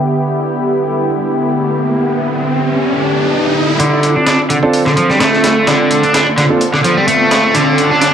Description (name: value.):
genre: breakbeat, breaks.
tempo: 128 BPM.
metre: 4/4.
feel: swing 54% on 16ths.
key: unclear.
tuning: A4 = 441 Hz.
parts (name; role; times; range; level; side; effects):
lush unison pad; sustained chords; 0.0-8.1 s; D3 to A4; -15 LUFS; equal; chorus, phaser, sidechain pumping.
riser; sound effects; 0.9-8.1 s; none; -19 LUFS; equal; none.
cranked stack guitar; riff; 3.8-8.1 s; D3 to D4; -12 LUFS; equal; overdrive, low-pass filter, dub echo.
breakbeat sampler-style drum kit; drums; 3.8-8.1 s; hi-hat, kick drum, snare drum; -17 LUFS; equal; high-pass filter on hats, high-pass filter on kick, high-pass filter on snare, high-pass filter on room.
warm grand piano; stabs; 4.6-6.6 s; C4 to A4; -16 LUFS; right 3 dB; dub echo.
room: wet studio reverb, RT60 0.6 s.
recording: dark, warm production.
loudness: -10 LUFS.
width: side -8 dB against mid.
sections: 0.0-3.8 A section; 3.8-8.1 B section.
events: riser 0.9-3.8, 3.8-8.1; build-up 3.8-8.1; drum fill 7.5-8.1.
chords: 0.0 Em7; 3.8 Dm7.